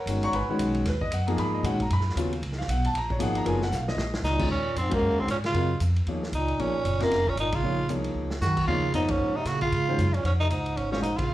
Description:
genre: modal jazz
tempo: 230 BPM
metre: 4/4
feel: swing 59% on 8ths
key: Eb dorian from 4.5 s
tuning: A4 = 440 Hz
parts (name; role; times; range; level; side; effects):
- warm concert grand piano; accompaniment; 0.0-11.0 s; C#3 to C#6; -29 LUFS; left 1 dB; none
- upright bass; bass; 0.1-11.3 s; F1 to A#2; -28 LUFS; equal; none
- vintage drum kit; drums; 0.1-11.2 s; crash cymbal, hi-hat, kick drum, ride cymbal, snare drum; -35 LUFS; equal; none
- growling tenor saxophone; melody; 4.2-11.3 s; Bb3 to Gb4; -27 LUFS; equal; none
- clear bass clarinet; second line; 4.2-11.3 s; Gb2 to Eb3; -31 LUFS; right 3 dB; none
room: light reverb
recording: studio reverb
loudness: -24 LUFS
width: side -14 dB against mid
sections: 0.0-4.5 A section; 4.5-11.3 B section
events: drum fill 3.7-4.2, 8.2; band accent 4.9, 7.5, 9.1, 11.2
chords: 0.3 G#m9; 2.4 F#; 4.5 Ebm11; 8.7 Db

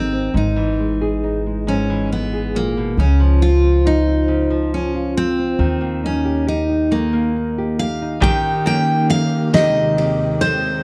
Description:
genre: acoustic folk-pop ballad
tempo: 46 BPM (dotted quarters)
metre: 6/8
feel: straight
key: unclear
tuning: A4 = 440 Hz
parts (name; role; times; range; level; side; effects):
- picked steel-string acoustic guitar; melody; 0.0-10.8 s; Bb3 to G5; -22 LUFS; equal; none
- nylon-string guitar; accompaniment; 0.0-10.8 s; Ab2 to G#4; -25 LUFS; equal; none
- upright bass; bass; 0.0-8.2 s; Ab1 to Eb2; -22 LUFS; equal; none
- analog string pad; sustained chords; 8.2-10.8 s; Eb2 to G4; -25 LUFS; equal; ensemble chorus
- direct-recorded clean electric guitar; arpeggios; 8.2-10.8 s; Eb3 to G4; -24 LUFS; equal; tremolo
- loose indie drum kit; drums; 8.2-10.6 s; kick drum, ride cymbal, snare drum; -26 LUFS; equal; none
room: light reverb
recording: dark, warm production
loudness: -18 LUFS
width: mono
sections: 0.0-8.2 A section; 8.2-10.8 B section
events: none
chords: 0.3 Emaj7/G#; 3.0 Dbmaj7; 5.6 Eb; 8.2 Eb7; 9.5 Abmaj7/Eb

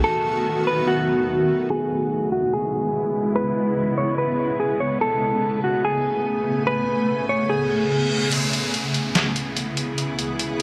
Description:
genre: hip hop, atmospheric cloud-rap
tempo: 145 BPM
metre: 4/4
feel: half-time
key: E major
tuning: A4 = 440 Hz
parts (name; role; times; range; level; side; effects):
- mellow electric guitar; melody; 0.0-8.3 s; F#4 to C#5; -25 LUFS; equal; low-pass filter, delay
- granular cloud pad; sustained chords; 0.0-10.6 s; C#3 to G#5; -26 LUFS; equal; built-in reverb, low-pass filter
- reverse cymbal and downlifter; sound effects; 7.7-10.6 s; none; -31 LUFS; equal; none
- trip hop sampler-style drum kit; drums; 8.3-10.6 s; crash cymbal, hi-hat, snare drum; -26 LUFS; equal; none
room: light reverb, digital ambience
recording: none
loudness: -22 LUFS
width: mono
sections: 0.0-1.7 A section; 1.7-8.3 B section; 8.3-10.6 C section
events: break 0.0-1.7; filter sweep 1.7-8.3; reverse cymbal 7.7-8.3; kick muted 8.3-10.6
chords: 0.0 B7; 1.7 E6; 5.0 Amaj9; 8.3 E6

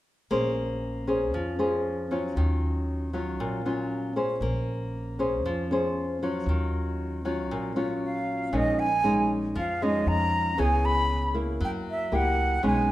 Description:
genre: bossa nova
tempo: 117 BPM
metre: 4/4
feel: straight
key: Bb minor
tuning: A4 = 439 Hz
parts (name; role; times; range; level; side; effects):
- nylon-string guitar; accompaniment; 0.3-12.9 s; Bb2 to C5; -27 LUFS; left 1 dB; none
- upright bass; bass; 0.3-12.9 s; Bb1 to Gb2; -30 LUFS; equal; none
- jazz flute; melody; 8.0-12.9 s; Eb5 to Cb6; -26 LUFS; right 1 dB; none
room: wet large studio reverb, RT60 1.4 s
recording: minimal, uncompressed stereo recording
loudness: -25 LUFS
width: side -15 dB against mid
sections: 0.3-8.5 A section; 8.5-12.9 B section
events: none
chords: 0.3 Bbm9; 2.4 Ebm9; 4.4 Bbm9; 6.5 Ebm9; 8.5 Bbm7; 10.6 Dbm7; 11.6 Gb7b9

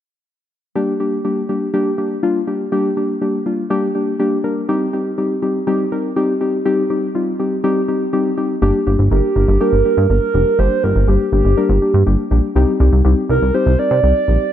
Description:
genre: synth-pop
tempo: 122 BPM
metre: 4/4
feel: straight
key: unclear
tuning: A4 = 438 Hz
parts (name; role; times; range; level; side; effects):
- muted felt-like synth keys; accompaniment; 0.8-14.5 s; G3 to Bb4; -17 LUFS; left 2 dB; chorus
- chorused synth bass; bass; 8.6-14.4 s; F1 to C3; -14 LUFS; equal; none
- hollow clarinet-like synth lead; melody; 9.1-14.5 s; G4 to D5; -17 LUFS; right 4 dB; chorus, phaser, digital delay
room: light reverb, digital ambience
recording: none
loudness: -14 LUFS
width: side -10 dB against mid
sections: 0.8-8.6 A section; 8.6-14.5 B section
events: none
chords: 0.8 Gm; 4.7 Cm; 8.6 Gm; 12.6 Cm

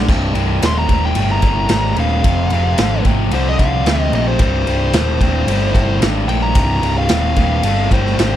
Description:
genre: blues rock power trio and southern rock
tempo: 111 BPM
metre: 4/4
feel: straight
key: C minor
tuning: A4 = 440 Hz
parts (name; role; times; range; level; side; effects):
- tight distorted guitar; riff; 0.0-8.4 s; C2 to D3; -19 LUFS; equal; distortion
- overdriven picked electric bass; bass; 0.0-8.4 s; C1 to D2; -18 LUFS; equal; none
- raw garage drum kit; drums; 0.1-8.3 s; crash cymbal, kick drum, ride cymbal, snare drum; -18 LUFS; equal; none
- fuzz lead guitar; melody; 0.7-8.4 s; C5 to C6; -21 LUFS; left 1 dB; distortion
room: little or no reverb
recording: none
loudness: -13 LUFS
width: side -12 dB against mid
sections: 0.1-8.4 A section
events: lead electric guitar solo 0.0-8.4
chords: 0.1 Cm7; 2.2 Fm; 4.4 Cm

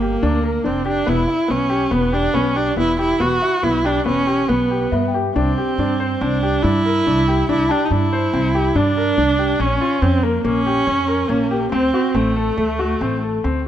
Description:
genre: contemporary instrumental, chamber music in an uneven meter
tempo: 141 BPM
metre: 5/4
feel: straight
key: unclear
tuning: A4 = 440 Hz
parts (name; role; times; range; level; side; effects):
- warm viola; second line; 0.0-13.7 s; A3 to F#4; -19 LUFS; right 2 dB; none
- clear grand piano; arpeggios; 0.0-13.6 s; A3 to C5; -21 LUFS; left 4 dB; none
- upright bass; bass; 0.0-13.7 s; E1 to G2; -22 LUFS; right 1 dB; none
- celesta; texture; 0.0-0.4, 4.9-8.8 s; E5 to Bb5; -28 LUFS; left 11 dB; none
room: light reverb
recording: none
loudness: -16 LUFS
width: side -10 dB against mid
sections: 0.0-13.7 A section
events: none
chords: 0.0 Gm; 1.1 Em; 5.3 Cadd9; 9.6 Bbm; 11.7 D7

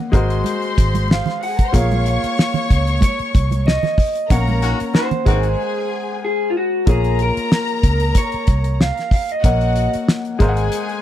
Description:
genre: lush 1970s-style soul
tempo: 93 BPM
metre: 4/4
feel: swing 54% on 16ths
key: Bb minor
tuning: A4 = 440 Hz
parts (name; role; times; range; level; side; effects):
- warm grand piano; accompaniment; 0.0-11.0 s; Ab3 to Gb5; -24 LUFS; left 4 dB; none
- warm studio string section; second line; 0.1-11.0 s; Gb4 to Db6; -26 LUFS; left 3 dB; none
- vintage muted fingered electric bass; bass; 0.1-10.7 s; Ab1 to Db2; -19 LUFS; equal; none
- damped 70s drum kit; drums; 0.1-11.0 s; hi-hat, kick drum, snare drum; -16 LUFS; equal; none
- congas; percussion; 0.1-5.4 s; none; -25 LUFS; right 6 dB; none
- electric guitar through a small old amp; melody; 1.1-9.9 s; F4 to Gb5; -22 LUFS; right 1 dB; none
- warm horn section; stabs; 4.6-5.5 s; C4 to Gb4; -26 LUFS; left 3 dB; none
room: little or no reverb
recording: dry, close 1970s-style studio recording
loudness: -15 LUFS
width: side -12 dB against mid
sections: 0.0-6.9 A section; 6.9-11.0 A section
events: band accent 4.3-6.9; break 5.6-6.9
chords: 0.1 Ab7; 1.7 Bbm7; 4.3 Ebm7/Bb; 5.3 Ab7; 6.9 Bbm7; 9.4 Ebm7/Bb; 10.4 Ab7

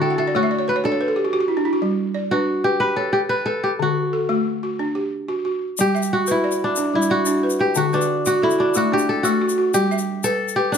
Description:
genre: west african traditional, West African string and xylophone music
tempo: 121 BPM (dotted quarters)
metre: 12/8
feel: straight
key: G lydian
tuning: A4 = 440 Hz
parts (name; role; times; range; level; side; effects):
- kora; melody; 0.0-10.8 s; D4 to B4; -20 LUFS; equal; none
- balafon; arpeggios; 0.0-10.8 s; D3 to G5; -21 LUFS; equal; none
- tube shaker; percussion; 5.8-10.8 s; none; -29 LUFS; left 6 dB; none
room: light reverb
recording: close, detailed microphones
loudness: -18 LUFS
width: side -7 dB against mid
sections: 0.0-5.8 A section; 5.8-10.8 B section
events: balafon fill 0.0-1.8; kora solo 5.8-10.8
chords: 0.0 D; 1.8 G; 3.8 D; 5.8 G; 7.8 D; 9.7 G

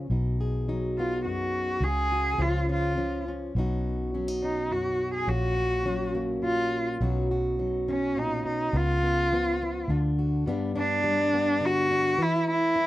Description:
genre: acoustic folk-pop ballad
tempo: 104 BPM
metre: 3/4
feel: straight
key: unclear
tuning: A4 = 440 Hz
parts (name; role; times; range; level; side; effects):
- fingerpicked plugged-in steel-string acoustic guitar; accompaniment; 0.0-12.9 s; F#2 to G#4; -29 LUFS; left 1 dB; none
- vintage muted fingered electric bass; bass; 0.0-10.5 s; A#1 to D2; -30 LUFS; equal; none
- warm cello; melody; 1.0-12.9 s; C#4 to G#4; -26 LUFS; equal; none
room: little or no reverb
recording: dry, close 1970s-style studio recording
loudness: -24 LUFS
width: side -15 dB against mid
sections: 0.0-10.5 A section; 10.5-12.9 B section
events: none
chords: 0.1 B6; 1.8 C#sus4; 2.4 C#; 3.5 Badd9; 5.3 F#/A#; 7.0 Badd9; 8.7 C#7; 9.9 D; 10.5 G; 12.2 E5

